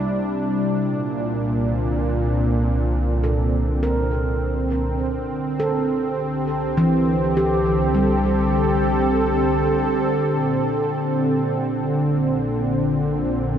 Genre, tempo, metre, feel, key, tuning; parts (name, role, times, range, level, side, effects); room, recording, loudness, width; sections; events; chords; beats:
ambient; 51 BPM; 4/4; straight; C mixolydian; A4 = 440 Hz
warm analog pad; sustained chords; 0.0-13.6 s; Bb2 to A4; -20 LUFS; right 1 dB; chorus
handpan; arpeggios; 0.0-13.6 s; E3 to Bb4; -25 LUFS; left 1 dB; diffuse ambient delay
deep rumbling drone; bass; 0.0-13.6 s; Bb1 to C2; -26 LUFS; equal; built-in reverb
wet cathedral reverb, RT60 5.5 s; in a vast, echoing space; -19 LUFS; side -9 dB against mid
0.0-10.3 A section; 10.3-13.6 B section
0.0 C; 0.9 C69; 10.3 Bb6
| 0.87 2.05 3.23 4.40 | 5.58 6.76 7.93 9.11 | 10.29 11.46 12.64